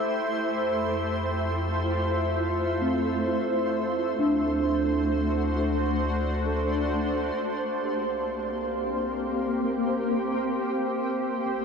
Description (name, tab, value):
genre	ambient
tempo	66 BPM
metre	4/4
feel	straight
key	C mixolydian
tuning	A4 = 438 Hz
part	shimmering ambient pad	sustained chords	0.0-11.6 s	A3 to C5	-26 LUFS	equal	chorus, built-in reverb, shimmer reverb
part	large celesta	arpeggios	0.0-11.6 s	C4 to D6	-31 LUFS	right 1 dB	ping-pong delay, shimmer reverb
part	deep rumbling drone	bass	0.7-11.6 s	A1 to F2	-33 LUFS	left 1 dB	built-in reverb
part	drifting glass-harmonics texture	texture	0.0-7.4 s	E5 to E6	-50 LUFS	right 1 dB	none
room	wet lush hall reverb, RT60 2.4 s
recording	none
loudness	-24 LUFS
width	side -6 dB against mid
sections	0.0-7.4 A section; 7.4-11.6 B section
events	fade-in on synth drone 7.4-11.6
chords	0.1 Fmaj7; 3.7 D7; 7.4 C5; 11.0 Am7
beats	| 0.09 1.00 1.91 2.81 | 3.72 4.63 5.54 6.45 | 7.36 8.27 9.18 10.09 | 11.00